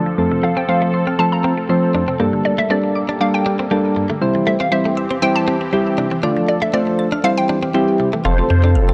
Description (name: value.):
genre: pop.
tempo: 119 BPM.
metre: 4/4.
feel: straight.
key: unclear.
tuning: A4 = 440 Hz.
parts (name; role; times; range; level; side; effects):
soft electric-piano-like synth keys; accompaniment; 0.0-8.9 s; F3 to D5; -20 LUFS; equal; chorus, low-pass filter.
sweeping resonant pad; sustained chords; 0.0-8.9 s; C3 to A4; -27 LUFS; equal; chorus, low-pass filter.
mallet-like synth pluck; arpeggios; 0.1-8.9 s; F2 to A6; -30 LUFS; equal; chorus, low-pass filter, tape echo.
direct-recorded clean electric guitar; riff; 0.3-8.9 s; A3 to F4; -26 LUFS; equal; subtle chorus, low-pass filter.
hollow square pluck; melody; 0.4-7.5 s; D5 to Bb5; -24 LUFS; equal; chorus, low-pass filter, tape echo.
filtered supersaw swell; melody; 8.2-8.9 s; A4 to C5; -26 LUFS; equal; phaser.
warm sub bass; bass; 8.2-8.9 s; F1 to F2; -15 LUFS; equal; none.
room: light reverb.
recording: dry, gritty hardware recording.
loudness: -17 LUFS.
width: mono.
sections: 0.0-8.2 A section.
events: build-up 0.0-8.2.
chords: 0.2 F; 2.2 Gmadd9; 4.2 C; 6.2 Dm; 7.2 C; 8.2 F.